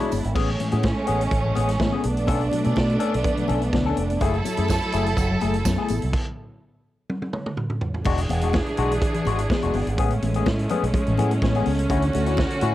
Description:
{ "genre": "disco", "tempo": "125 BPM", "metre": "4/4", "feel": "straight", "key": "unclear", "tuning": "A4 = 440 Hz", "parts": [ { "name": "barky tine electric piano", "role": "accompaniment", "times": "0.0-12.7 s", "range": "A2 to C#5", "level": "-27 LUFS", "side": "left 6 dB", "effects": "overdrive, phaser, cassette tape" }, { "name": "warm studio string section", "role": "sustained chords", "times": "0.0-12.7 s", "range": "D3 to A4", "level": "-25 LUFS", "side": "right 2 dB", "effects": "cassette tape" }, { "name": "vintage drum kit", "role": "drums", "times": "0.0-12.7 s", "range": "crash cymbal, hi-hat, kick drum, snare drum, toms", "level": "-27 LUFS", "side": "right 1 dB", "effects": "cassette tape" }, { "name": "congas", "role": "percussion", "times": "0.0-12.5 s", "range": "none", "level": "-32 LUFS", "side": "left 7 dB", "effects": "none" }, { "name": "fingered electric bass with an envelope filter", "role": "bass", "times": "0.1-12.7 s", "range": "E1 to B2", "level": "-24 LUFS", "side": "right 1 dB", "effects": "none" }, { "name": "tambourine", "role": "percussion", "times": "0.1-0.2, 4.5-6.0 s", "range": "none", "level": "-38 LUFS", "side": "right 11 dB", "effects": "none" } ], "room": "studio reverb", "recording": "home recording on cassette", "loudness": "-20 LUFS", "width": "side -14 dB against mid", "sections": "0.4-8.1 A section; 8.1-12.7 B section", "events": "stop 6.1-8.1; drum fill 7.1-8.1", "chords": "0.4 Amaj7; 2.0 Bm7; 4.2 F#m7; 6.1 N.C.; 8.1 E7; 10.0 Amaj9; 11.9 Dmaj7" }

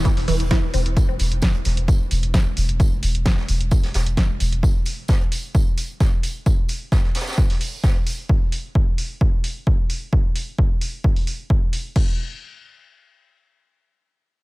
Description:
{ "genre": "driving peak-time techno", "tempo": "131 BPM", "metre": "4/4", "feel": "straight", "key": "unclear", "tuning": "A4 = 440 Hz", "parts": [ { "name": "resonant blip pluck", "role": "riff", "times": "0.0-0.8 s", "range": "E3 to C4", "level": "-27 LUFS", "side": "equal", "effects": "phaser, sidechain pumping, ping-pong delay" }, { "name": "saturated sub bass", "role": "bass", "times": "0.0-4.6 s", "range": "E1", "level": "-22 LUFS", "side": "equal", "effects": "overdrive, sidechain pumping, low-pass filter" }, { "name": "vintage brush drum kit", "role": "drums", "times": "0.0-8.2 s", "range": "hi-hat, snare drum, tambourine", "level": "-34 LUFS", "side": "right 1 dB", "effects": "sidechain pumping on hats, high-pass filter on hats, high-pass filter on snare, sidechain pumping on perc, high-pass filter on perc, high-pass filter on room" }, { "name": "electronic kick drum", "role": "drums", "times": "0.1-12.1 s", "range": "none", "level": "-18 LUFS", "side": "equal", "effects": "none" }, { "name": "punchy analog drum machine", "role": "drums", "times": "0.1-12.1 s", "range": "crash cymbal, hi-hat, snare drum", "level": "-29 LUFS", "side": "equal", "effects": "sidechain pumping on hats, sidechain pumping on cymbals" } ], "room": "studio reverb", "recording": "none", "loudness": "-18 LUFS", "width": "side -22 dB against mid", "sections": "0.0-12.0 A section; 12.0-14.4 B section", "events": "none", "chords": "none" }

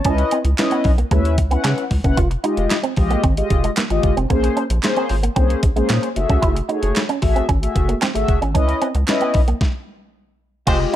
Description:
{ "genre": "early-eighties boogie funk", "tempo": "113 BPM", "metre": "4/4", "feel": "straight", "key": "unclear", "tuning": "A4 = 439 Hz", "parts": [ { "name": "mellow synth brass", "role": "accompaniment", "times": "0.0-11.0 s", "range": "Ab3 to A5", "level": "-21 LUFS", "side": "left 2 dB", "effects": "chorus" }, { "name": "rubbery square bass", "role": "bass", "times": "0.0-10.9 s", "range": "F1 to Db3", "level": "-19 LUFS", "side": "equal", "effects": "none" }, { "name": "crisp 8-bit digital drum machine", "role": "drums", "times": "0.0-11.0 s", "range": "crash cymbal, handclaps, hi-hat, kick drum, snare drum", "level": "-20 LUFS", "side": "equal", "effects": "none" }, { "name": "electric guitar with an envelope filter", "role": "riff", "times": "0.1-11.0 s", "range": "Ab3 to F4", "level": "-24 LUFS", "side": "right 5 dB", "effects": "ensemble chorus" }, { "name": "group handclap", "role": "percussion", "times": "0.6-9.2 s", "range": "none", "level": "-30 LUFS", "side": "right 6 dB", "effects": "none" }, { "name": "clear horn section", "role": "second line", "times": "10.7-11.0 s", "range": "Ab3 to C5", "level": "-23 LUFS", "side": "left 2 dB", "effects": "none" } ], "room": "light reverb", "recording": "none", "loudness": "-16 LUFS", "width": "side -12 dB against mid", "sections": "0.0-10.7 A section", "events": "stop 9.6-10.7", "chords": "0.1 Dbm9; 2.2 Fm9; 4.3 Bbm9; 6.2 Gbm9; 8.5 Dbm9" }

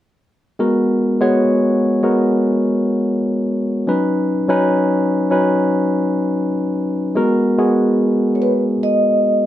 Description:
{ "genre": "soul", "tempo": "73 BPM", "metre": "4/4", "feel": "straight", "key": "G# minor", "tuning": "A4 = 438 Hz", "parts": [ { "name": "barky tine electric piano", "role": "accompaniment", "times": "0.6-9.5 s", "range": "F#3 to C#5", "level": "-15 LUFS", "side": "equal", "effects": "none" }, { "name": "vibraphone with soft mallets", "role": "melody", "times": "8.4-9.5 s", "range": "B4 to D#5", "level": "-16 LUFS", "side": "equal", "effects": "none" } ], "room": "moderate studio reverb, RT60 0.5 s", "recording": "none", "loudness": "-14 LUFS", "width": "side -12 dB against mid", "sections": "0.6-7.2 A section; 7.2-9.5 B section", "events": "none", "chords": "0.6 G#m9; 3.9 C#9sus4; 7.2 G#m9" }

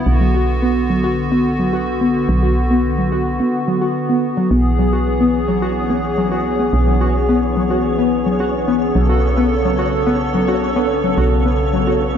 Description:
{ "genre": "IDM", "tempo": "108 BPM", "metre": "4/4", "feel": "straight", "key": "unclear", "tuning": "A4 = 440 Hz", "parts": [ { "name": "hollow soft pad", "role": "sustained chords", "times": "0.0-12.2 s", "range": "C#3 to A4", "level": "-19 LUFS", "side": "equal", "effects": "chorus" }, { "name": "woody FM bass", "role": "bass", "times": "0.0-12.2 s", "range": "B1", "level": "-20 LUFS", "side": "right 1 dB", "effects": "none" }, { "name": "warbly dusty pluck", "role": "arpeggios", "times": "0.2-12.2 s", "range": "F#3 to F#4", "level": "-18 LUFS", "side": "left 1 dB", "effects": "lush chorus, ping-pong delay" }, { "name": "flickering grainy texture", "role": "texture", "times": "5.0-12.2 s", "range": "C#4 to C#5", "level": "-25 LUFS", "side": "equal", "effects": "built-in reverb" } ], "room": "light reverb", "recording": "none", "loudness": "-14 LUFS", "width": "side -8 dB against mid", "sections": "0.0-12.2 A section", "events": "none", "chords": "0.1 D6/B; 4.5 E/B; 9.0 Aadd9/B" }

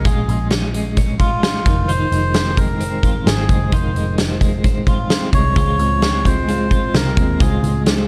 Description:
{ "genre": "jangly indie pop", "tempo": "130 BPM", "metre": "4/4", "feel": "straight", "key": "unclear", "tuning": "A4 = 441 Hz", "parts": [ { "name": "melodica", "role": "melody", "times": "0.0-7.8 s", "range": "F4 to Db5", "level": "-25 LUFS", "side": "equal", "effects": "slapback echo" }, { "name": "twelve-string electric guitar", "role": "arpeggios", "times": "0.0-8.1 s", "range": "Eb3 to F4", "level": "-26 LUFS", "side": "equal", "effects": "tremolo" }, { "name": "vintage muted picked electric bass", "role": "bass", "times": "0.0-8.1 s", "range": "F1 to Eb2", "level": "-23 LUFS", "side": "equal", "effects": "none" }, { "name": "big rock drum kit", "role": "drums", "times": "0.1-8.0 s", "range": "hi-hat, kick drum, snare drum", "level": "-20 LUFS", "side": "equal", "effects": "none" }, { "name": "fingerpicked steel-string acoustic guitar", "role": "accompaniment", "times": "5.6-8.1 s", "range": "Db3 to F4", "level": "-26 LUFS", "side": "equal", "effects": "none" } ], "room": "small room ambience", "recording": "dark, warm production", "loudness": "-17 LUFS", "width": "mono", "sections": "0.0-8.1 A section", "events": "none", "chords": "0.0 Bbm7; 1.7 Fm7; 5.6 Dbmaj7" }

